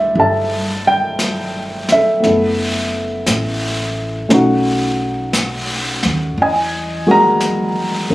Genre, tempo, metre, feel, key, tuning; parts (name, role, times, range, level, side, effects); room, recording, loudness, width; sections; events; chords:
jazz ballad; 58 BPM; 4/4; swing 68% on 8ths; A4 = 440 Hz
warm upright piano; accompaniment; 0.0-8.1 s; G#3 to A#5; -15 LUFS; equal
upright bass; bass; 0.0-8.1 s; F#1 to E2; -24 LUFS; equal
jazz brush drum kit; drums; 0.2-8.1 s; brushed snare drum, hi-hat, snare drum; -22 LUFS; left 1 dB
light reverb; recorded on a phone in the room, studio ambience, compression; -14 LUFS; side -17 dB against mid
0.0-8.1 A section
0.0 C69; 2.2 F#m7; 4.3 B9; 6.4 Emaj9#11